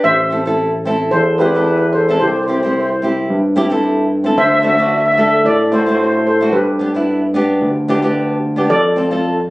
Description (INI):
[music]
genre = calypso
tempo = 111 BPM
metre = 4/4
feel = swing 54% on 16ths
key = unclear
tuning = A4 = 440 Hz
[part]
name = steel pan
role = melody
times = 0.0-9.5 s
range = G4 to E5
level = -15 LUFS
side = equal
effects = none
[part]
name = flamenco guitar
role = accompaniment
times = 0.0-9.4 s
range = A3 to C5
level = -18 LUFS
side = equal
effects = none
[part]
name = barky tine electric piano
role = bass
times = 0.0-9.5 s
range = A1 to A2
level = -17 LUFS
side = equal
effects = none
[sound]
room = moderate studio reverb, RT60 0.6 s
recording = recorded on a phone in the room, studio reverb, compression, nothing above 10.9 kHz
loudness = -12 LUFS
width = side -20 dB against mid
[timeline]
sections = 0.0-9.5 A section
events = none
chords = 0.0 Am; 2.2 C; 4.4 D; 6.5 G; 8.7 F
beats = | 0.04 0.58 1.13 1.67 | 2.21 2.75 3.29 3.83 | 4.38 4.92 5.46 6.00 | 6.54 7.08 7.62 8.16 | 8.70 9.24